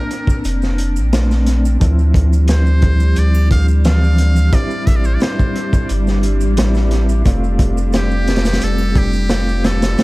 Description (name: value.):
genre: trip hop.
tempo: 88 BPM.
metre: 4/4.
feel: straight.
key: unclear.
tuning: A4 = 442 Hz.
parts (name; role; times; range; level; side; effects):
trumpet with metal mute; melody; 0.0-10.0 s; G4 to F5; -26 LUFS; equal; dub echo.
mellow electric guitar; accompaniment; 0.0-10.0 s; E3 to F4; -22 LUFS; right 1 dB; tremolo, tape echo.
warbly tape-like pad; sustained chords; 0.0-10.0 s; G3 to A5; -25 LUFS; left 2 dB; chorus, built-in reverb.
bowed-like drone; texture; 0.0-10.0 s; D4; -32 LUFS; right 1 dB; none.
crunchy breakbeat drum kit; drums; 0.1-10.0 s; hi-hat, kick drum, snare drum; -18 LUFS; equal; none.
maracas and triangle; percussion; 0.3-10.0 s; none; -39 LUFS; right 6 dB; analog delay.
warm sub bass; bass; 0.4-10.0 s; F1 to D2; -14 LUFS; equal; none.
room: studio reverb.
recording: echo-heavy mix.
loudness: -12 LUFS.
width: side -20 dB against mid.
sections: 0.0-10.0 A section.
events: none.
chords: 0.0 Bbmaj7; 1.8 Dm7; 4.5 Am7; 7.3 F.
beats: 0.44 1.12 | 1.80 2.49 3.17 3.85 | 4.53 5.21 5.89 6.58 | 7.26 7.94 8.62 9.30 | 9.99.